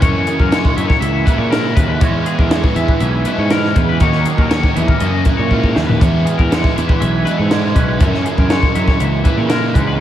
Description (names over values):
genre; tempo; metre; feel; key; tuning
math rock and midwest emo; 120 BPM; 4/4; straight; unclear; A4 = 440 Hz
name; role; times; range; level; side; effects
twangy electric guitar; accompaniment; 0.0-10.0 s; E2 to F#4; -23 LUFS; right 5 dB; ensemble chorus
twangy electric guitar; arpeggios; 0.0-10.0 s; G#4 to E5; -22 LUFS; left 6 dB; analog chorus, tape echo
overdriven semi-hollow guitar; riff; 0.0-10.0 s; F#2 to E4; -20 LUFS; right 1 dB; lush chorus
fuzz picked electric bass; bass; 0.0-10.0 s; B1 to A#2; -18 LUFS; equal; overdrive
compact cocktail drum kit; drums; 0.0-9.9 s; hi-hat, kick drum, snare drum, toms; -16 LUFS; equal; none
room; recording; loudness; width
moderate lush hall reverb, RT60 2.5 s; dreamy mix soaked in reverb; -12 LUFS; side -11 dB against mid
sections
0.0-10.0 A section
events
drum fill 5.5-6.0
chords
0.0 F#9; 2.0 E69; 4.0 D#m7; 5.0 F#13; 6.0 E6; 8.0 F#9